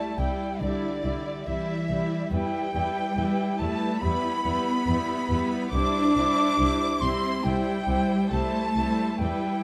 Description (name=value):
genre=cinematic, emotional film score for orchestra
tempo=70 BPM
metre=4/4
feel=rubato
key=C major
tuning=A4 = 441 Hz
part: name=warm studio violin section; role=melody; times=0.0-9.6 s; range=B4 to D5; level=-40 LUFS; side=equal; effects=none
part: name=rich studio violin section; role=second line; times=0.0-9.6 s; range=D5 to D6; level=-38 LUFS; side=equal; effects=none
part: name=silver concert flute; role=second line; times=0.0-9.6 s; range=D5 to D6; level=-32 LUFS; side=equal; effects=none
part: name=rich studio viola section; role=accompaniment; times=0.0-9.6 s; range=G3 to E4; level=-33 LUFS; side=equal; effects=none
part: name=warm studio cello section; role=bass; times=0.0-9.6 s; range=D3 to D4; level=-31 LUFS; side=equal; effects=none
part: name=rich studio double bass section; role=bass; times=0.2-9.3 s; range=C2 to E2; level=-34 LUFS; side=equal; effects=none
room=moderate scoring stage reverb, RT60 1.5 s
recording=close, detailed microphones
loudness=-26 LUFS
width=mono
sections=0.0-9.6 A section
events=none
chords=0.0 Cadd9; 2.3 Em; 5.7 Cadd9